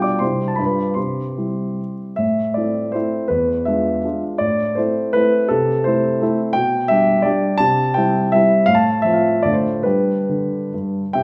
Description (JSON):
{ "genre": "classical, romantic triple-time dance for piano with dotted rhythms", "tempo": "132-184 BPM", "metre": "3/4", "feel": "rubato", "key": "A minor", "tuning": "A4 = 439 Hz", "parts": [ { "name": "dark grand piano", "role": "solo", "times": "0.0-11.2 s", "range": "E2 to D6", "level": "-18 LUFS", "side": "equal", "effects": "none" } ], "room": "moderate recital hall reverb, RT60 1.8 s", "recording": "none", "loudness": "-18 LUFS", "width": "mono", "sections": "0.0-2.2 A section; 2.2-11.2 B section", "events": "none", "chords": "0.2 C; 0.6 G7; 1.0 C; 2.2 Am; 3.3 E7b9; 4.4 Am; 5.5 Am/C; 6.6 G/B; 7.6 C; 8.7 F/A; 9.4 Dm7/A; 9.8 G" }